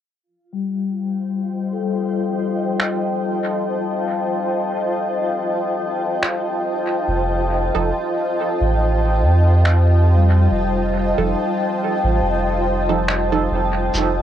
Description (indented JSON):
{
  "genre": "ambient dub",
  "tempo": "70 BPM",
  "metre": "4/4",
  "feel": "swing 56% on 16ths",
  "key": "F mixolydian",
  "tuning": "A4 = 437 Hz",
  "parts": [
    { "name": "granular cloud pad", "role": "sustained chords", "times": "1.2-14.2 s", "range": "F4 to A5", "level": "-21 LUFS", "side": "equal", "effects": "built-in reverb" },
    { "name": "vibraphone with soft mallets", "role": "arpeggios", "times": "0.5-14.0 s", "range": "G3 to F5", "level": "-26 LUFS", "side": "left 6 dB", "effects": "low-pass filter, tape echo" },
    { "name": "electronic finger snaps and shaker", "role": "drums", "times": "2.8-14.1 s", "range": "none", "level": "-25 LUFS", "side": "equal", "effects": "dub echo" },
    { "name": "soft dub sub bass", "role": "bass", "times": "7.1-14.2 s", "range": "F1 to F2", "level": "-17 LUFS", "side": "equal", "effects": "none" },
    { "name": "filtered dub chord stab", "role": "stabs", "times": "7.7-13.6 s", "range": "F3 to A4", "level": "-24 LUFS", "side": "right 8 dB", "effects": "phaser, dub echo" }
  ],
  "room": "moderate studio reverb, RT60 0.6 s",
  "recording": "home recording on cassette",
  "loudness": "-17 LUFS",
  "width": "side -10 dB against mid",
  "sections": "0.2-13.9 A section",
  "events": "filter sweep on vibraphone 0.2-13.9",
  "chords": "0.2 F7"
}